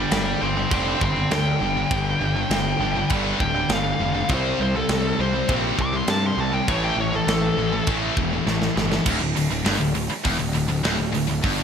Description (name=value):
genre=heavy metal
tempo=101 BPM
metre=4/4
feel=straight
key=unclear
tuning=A4 = 440 Hz
part: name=high-gain lead guitar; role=melody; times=0.0-7.9 s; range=A4 to D6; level=-26 LUFS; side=equal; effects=distortion, ping-pong delay
part: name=heavy high-gain guitar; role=riff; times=0.0-11.6 s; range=D2 to C4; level=-28 LUFS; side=right 10 dB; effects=distortion
part: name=heavy high-gain guitar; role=riff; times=0.0-11.6 s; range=D2 to C4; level=-29 LUFS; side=equal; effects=distortion
part: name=high-gain distorted guitar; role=riff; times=0.0-11.6 s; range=D2 to C4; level=-27 LUFS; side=left 10 dB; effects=distortion
part: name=fuzz picked electric bass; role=bass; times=0.0-11.6 s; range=D1 to G2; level=-27 LUFS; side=equal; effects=overdrive
part: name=tight metal drum kit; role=drums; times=0.1-11.6 s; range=crash cymbal, hi-hat, kick drum, snare drum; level=-26 LUFS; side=right 1 dB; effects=gated reverb
room=light reverb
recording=bright 1980s-style digital production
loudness=-20 LUFS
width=side -7 dB against mid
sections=0.0-9.1 A section; 9.1-11.6 B section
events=lead electric guitar solo 0.0-9.1; drum fill 8.5-9.1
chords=0.0 G5; 4.3 C5; 6.7 A5; 9.1 Cadd9/D (rootless)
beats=0.12 0.72 1.32 | 1.91 2.51 3.11 3.70 | 4.30 4.89 5.49 6.09 | 6.68 7.28 7.87 8.47 | 9.06 9.65 10.25 10.84 | 11.43